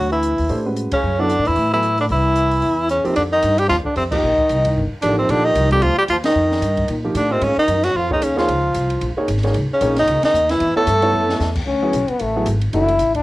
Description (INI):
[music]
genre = modal jazz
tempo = 226 BPM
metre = 4/4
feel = swing 58% on 8ths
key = F mixolydian from 3.2 s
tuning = A4 = 440 Hz
[part]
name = breathy tenor saxophone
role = melody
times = 0.0-11.5 s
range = C4 to A4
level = -18 LUFS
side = right 1 dB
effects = none
[part]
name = bright trombone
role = second line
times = 0.0-13.2 s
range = C3 to E4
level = -23 LUFS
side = left 3 dB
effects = cassette tape
[part]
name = upright bass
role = bass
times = 0.0-13.2 s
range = F#1 to Bb2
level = -22 LUFS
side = equal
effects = none
[part]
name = open jazz drum kit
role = drums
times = 0.2-13.2 s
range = crash cymbal, hi-hat, kick drum, ride cymbal, snare drum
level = -30 LUFS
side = equal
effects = cassette tape
[part]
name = warm concert grand piano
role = accompaniment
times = 0.5-12.9 s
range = E3 to Eb5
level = -23 LUFS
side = right 1 dB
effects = cassette tape
[sound]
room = moderate studio reverb, RT60 0.6 s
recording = home recording on cassette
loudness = -15 LUFS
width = side -18 dB against mid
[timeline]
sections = 0.0-3.2 A section; 3.2-11.7 B section; 11.7-13.2 C section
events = band accent 0.9, 4.1, 6.2, 10.2; drum fill 11.1; trombone solo 11.7-13.2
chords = 0.0 Dmaj9; 2.1 C; 3.2 F9sus4; 7.4 Absus4; 10.6 A13; 11.7 Dmaj9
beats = 0.23 0.50 0.76 | 1.03 1.30 1.56 1.83 | 2.10 2.36 2.63 2.90 | 3.16 3.43 3.70 3.96 | 4.23 4.50 4.76 5.03 | 5.29 5.56 5.83 6.09 | 6.36 6.62 6.89 7.16 | 7.42 7.69 7.95 8.22 | 8.48 8.75 9.02 9.28 | 9.55 9.81 10.08 10.35 | 10.61 10.88 11.14 11.41 | 11.67 11.94 12.20 12.47 | 12.74 13.00